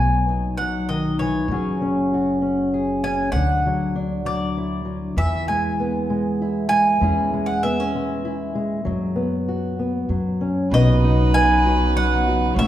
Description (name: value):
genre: acoustic folk duo or small band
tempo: 98 BPM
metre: 3/4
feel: straight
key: B major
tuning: A4 = 439 Hz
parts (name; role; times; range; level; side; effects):
- bowl-back mandolin; melody; 0.0-12.7 s; C#5 to G#5; -23 LUFS; right 1 dB; none
- fingerpicked old ladder-braced acoustic guitar; accompaniment; 0.0-12.7 s; A2 to B4; -21 LUFS; left 1 dB; none
- upright bass; bass; 0.0-12.7 s; F#1 to F#2; -26 LUFS; right 1 dB; none
- warm fiddle; second line; 10.7-12.7 s; B4 to C#5; -27 LUFS; right 7 dB; none
- dark chamber string section; sustained chords; 10.7-12.7 s; C#3 to E4; -27 LUFS; right 1 dB; none
room: wet recital hall reverb, RT60 1.7 s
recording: recorded in a church or concert hall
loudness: -18 LUFS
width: side -12 dB against mid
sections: 0.0-10.7 A section; 10.7-12.7 B section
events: none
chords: 0.0 B; 1.5 F#sus2; 3.3 Dadd9; 5.2 E; 7.0 C#m/E; 8.9 F#sus4; 10.1 F#5; 10.7 Badd9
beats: 0.25 0.87 | 1.48 2.10 2.71 | 3.33 3.94 4.55 | 5.17 5.79 6.40 | 7.02 7.63 8.25 | 8.87 9.48 10.10 | 10.71 11.33 11.94 | 12.56